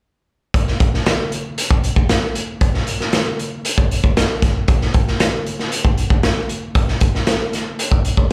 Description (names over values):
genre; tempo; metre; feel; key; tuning
funk; 116 BPM; 4/4; straight; none; none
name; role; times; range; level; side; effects
raw garage drum kit; drums; 0.5-8.3 s; hi-hat, kick drum, snare drum; -18 LUFS; equal; none
room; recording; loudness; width
light reverb; live gig heard through the venue's PA, club reverb; -18 LUFS; mono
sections
0.5-8.3 A section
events
none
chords
none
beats
| 0.55 1.06 1.58 2.10 | 2.62 3.13 3.65 4.17 | 4.68 5.20 5.72 6.24 | 6.75 7.27 7.79